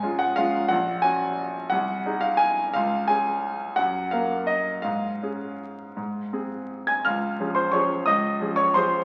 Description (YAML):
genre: classical, piano waltz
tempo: 155-186 BPM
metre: 3/4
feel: rubato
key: Db major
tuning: A4 = 440 Hz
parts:
  - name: clear grand piano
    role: solo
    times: 0.0-9.0 s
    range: Bb1 to Ab6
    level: -25 LUFS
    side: equal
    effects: none
room: wet recital hall reverb, RT60 1.7 s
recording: very old 78 rpm record, vinyl crackle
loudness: -25 LUFS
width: mono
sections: 0.0-7.1 A section; 7.1-9.0 B section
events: none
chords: 0.0 Db; 0.7 Gb/Bb; 1.7 Ab7/C; 2.7 Db; 3.8 Ebm/Gb; 4.8 Db/Ab; 6.0 Ab; 7.1 Db